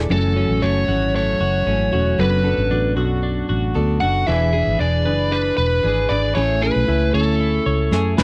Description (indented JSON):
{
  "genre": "jangly indie pop",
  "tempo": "115 BPM",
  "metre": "4/4",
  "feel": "straight",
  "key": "F# minor",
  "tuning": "A4 = 441 Hz",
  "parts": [
    { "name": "fingerpicked steel-string acoustic guitar", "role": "accompaniment", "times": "0.0-8.2 s", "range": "F#2 to B4", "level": "-27 LUFS", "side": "equal", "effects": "none" },
    { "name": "twelve-string electric guitar", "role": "arpeggios", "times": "0.0-8.2 s", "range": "F#2 to D5", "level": "-26 LUFS", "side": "equal", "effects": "slapback echo" },
    { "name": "vintage muted fingered electric bass", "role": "bass", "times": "0.0-8.2 s", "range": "E1 to F#2", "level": "-23 LUFS", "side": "equal", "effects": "none" },
    { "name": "biting lead guitar", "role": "melody", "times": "0.1-8.1 s", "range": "A4 to F#5", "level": "-23 LUFS", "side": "equal", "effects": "overdrive, slapback echo" },
    { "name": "snare drum", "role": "drums", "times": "7.9-8.2 s", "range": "none", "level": "-21 LUFS", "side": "equal", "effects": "none" }
  ],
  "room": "little or no reverb",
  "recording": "dry, close 1970s-style studio recording",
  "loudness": "-19 LUFS",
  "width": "mono",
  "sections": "0.1-8.2 A section",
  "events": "drum fill 7.9-8.2",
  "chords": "0.1 F#m7; 2.2 Bm7/F#; 4.3 E7; 6.4 Amaj7"
}